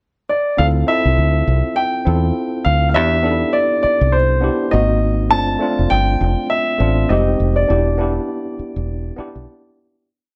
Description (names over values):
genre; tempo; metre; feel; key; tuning
lush 1970s-style soul; 101 BPM; 4/4; swing 58% on 16ths; D dorian; A4 = 436 Hz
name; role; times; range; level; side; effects
warm concert grand piano; melody; 0.3-9.7 s; C5 to A5; -20 LUFS; equal; none
tine electric piano; accompaniment; 0.6-10.1 s; Ab3 to A4; -23 LUFS; equal; overdrive
fingered electric bass; bass; 0.6-9.5 s; E1 to E2; -19 LUFS; equal; none
room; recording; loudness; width
light reverb, small room ambience; none; -17 LUFS; mono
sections
0.0-0.6 pickup bar; 0.6-10.1 A section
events
fade-out 7.7-10.1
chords
0.0 N.C.; 0.6 Dm9; 3.0 Cmaj9/E; 4.7 G#9; 5.3 G9sus4; 7.1 Fm7; 7.7 Em7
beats
0.00 | 0.59 1.18 1.77 2.36 | 2.95 3.54 4.13 4.73 | 5.32 5.91 6.50 7.10 | 7.69 8.29 8.88 9.47